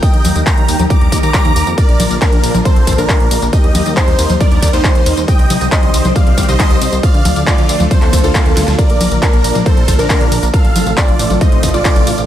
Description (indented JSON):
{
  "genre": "uplifting trance",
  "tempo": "137 BPM",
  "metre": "4/4",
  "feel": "straight",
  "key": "Bb major",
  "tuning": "A4 = 440 Hz",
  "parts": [
    { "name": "big supersaw lead", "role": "melody", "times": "0.0-12.2 s", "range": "D4 to D6", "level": "-19 LUFS", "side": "right 1 dB", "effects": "phaser, sidechain pumping, diffuse ambient delay" },
    { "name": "plucky unison lead", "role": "second line", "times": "0.0-12.2 s", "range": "A4 to D6", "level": "-22 LUFS", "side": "equal", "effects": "sidechain pumping, diffuse ambient delay" },
    { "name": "analog string pad", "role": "sustained chords", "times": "0.0-12.3 s", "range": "C3 to C4", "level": "-20 LUFS", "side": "equal", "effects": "ensemble chorus, sidechain pumping" },
    { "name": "big-room dance drum kit", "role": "drums", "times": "0.0-12.3 s", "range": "congas, handclaps, hi-hat, ride cymbal, snare drum, tambourine", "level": "-18 LUFS", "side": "left 2 dB", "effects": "none" },
    { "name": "electronic kick drum", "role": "drums", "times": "0.0-11.9 s", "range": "none", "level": "-12 LUFS", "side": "equal", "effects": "none" },
    { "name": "plucky analog bass", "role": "bass", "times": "0.1-12.2 s", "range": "A1 to F2", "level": "-17 LUFS", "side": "equal", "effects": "sidechain pumping" },
    { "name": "swell", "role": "sound effects", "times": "8.0-8.8 s", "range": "none", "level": "-23 LUFS", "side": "left 2 dB", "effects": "none" }
  ],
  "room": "light reverb",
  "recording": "none",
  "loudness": "-9 LUFS",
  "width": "side -11 dB against mid",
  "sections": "0.0-12.3 A section",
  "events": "swell 8.0-8.8; drum fill 8.6",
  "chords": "0.0 Eb; 1.8 Bb; 3.5 Eb; 5.3 Cm; 7.0 Dm; 8.8 Bb; 10.5 F/A"
}